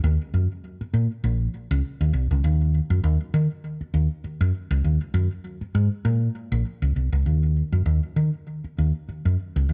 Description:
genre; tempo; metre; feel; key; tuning
funk; 100 BPM; 4/4; swing 56% on 16ths; Eb dorian; A4 = 435 Hz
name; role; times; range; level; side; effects
hollow-body short-scale fingered electric bass; solo; 0.0-9.7 s; Bb1 to Eb3; -24 LUFS; equal; tape echo
room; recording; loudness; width
light reverb; nothing above 10.4 kHz; -24 LUFS; mono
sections
0.0-7.3 A section; 7.3-9.7 B section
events
none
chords
none

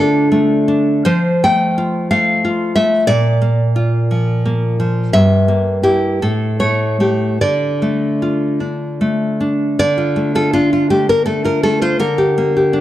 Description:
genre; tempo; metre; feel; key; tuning
romantic piece for solo classical guitar; 48-63 BPM (dotted quarters); 6/8; rubato; D minor; A4 = 435 Hz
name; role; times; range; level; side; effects
nylon-string guitar; solo; 0.0-12.8 s; G2 to G5; -13 LUFS; equal; none
room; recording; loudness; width
moderate recital hall reverb, RT60 1.7 s; dark, warm production; -13 LUFS; side -13 dB against mid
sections
0.0-9.8 A section; 9.8-12.8 A section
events
none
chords
0.0 Dm; 1.1 F; 3.1 Bb; 5.1 Edim/G; 6.2 A7; 7.4 Dm; 12.0 Gm/D

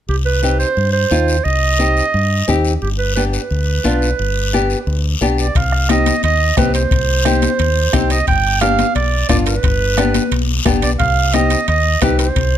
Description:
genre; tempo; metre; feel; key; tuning
latin, cumbia; 176 BPM; 4/4; straight; C harmonic minor; A4 = 440 Hz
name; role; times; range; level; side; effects
clear clarinet; melody; 0.1-12.6 s; G4 to G5; -18 LUFS; right 5 dB; none
deep dub fingered electric bass; bass; 0.1-12.6 s; G1 to G2; -17 LUFS; equal; none
guiro; percussion; 0.1-12.6 s; none; -26 LUFS; left 7 dB; none
nylon-string guitar; accompaniment; 0.4-12.3 s; B3 to G4; -20 LUFS; left 3 dB; none
bombo; percussion; 5.6-12.5 s; none; -19 LUFS; left 2 dB; none
timbales; percussion; 5.6-12.5 s; none; -27 LUFS; right 10 dB; none
congas; percussion; 5.9-12.2 s; none; -22 LUFS; left 7 dB; none
room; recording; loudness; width
light reverb; close, detailed microphones; -13 LUFS; side -10 dB against mid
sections
0.1-5.6 A section; 5.6-12.6 B section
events
none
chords
0.1 Cm; 2.8 G; 5.6 Cm; 8.3 G; 11.0 Cm

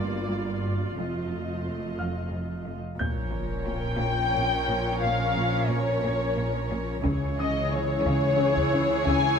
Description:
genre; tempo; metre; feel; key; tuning
cinematic, suspense film score; 89 BPM; 3/4; straight; Bb dorian from 3.0 s; A4 = 442 Hz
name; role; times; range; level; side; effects
muted studio violin section; melody; 0.0-9.4 s; Db5 to Ab5; -28 LUFS; left 4 dB; none
muted studio viola section; accompaniment; 0.0-9.4 s; Fb3 to F4; -33 LUFS; equal; none
muted studio cello section; riff; 0.0-9.3 s; F2 to Db3; -32 LUFS; equal; none
muted studio cello section; bass; 0.0-9.4 s; F2 to Db3; -35 LUFS; right 1 dB; none
muted studio double bass section; bass; 0.0-9.4 s; F1 to Db2; -32 LUFS; right 2 dB; none
bright grand piano; texture; 0.0-9.4 s; F5 to G6; -42 LUFS; equal; none
muted studio violin section; second line; 3.0-9.4 s; Ab4 to Db5; -31 LUFS; left 1 dB; none
taiko ensemble; drums; 3.0-9.4 s; none; -31 LUFS; left 1 dB; none
sub drop; sound effects; 3.0-5.0 s; none; -34 LUFS; left 1 dB; none
room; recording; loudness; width
moderate scoring stage reverb, RT60 1.9 s; close, detailed microphones; -24 LUFS; side -6 dB against mid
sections
0.0-3.0 A section; 3.0-9.4 B section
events
impact 3.0-5.0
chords
0.0 Gm7; 1.0 F7; 3.0 Bbm; 7.1 Dbm

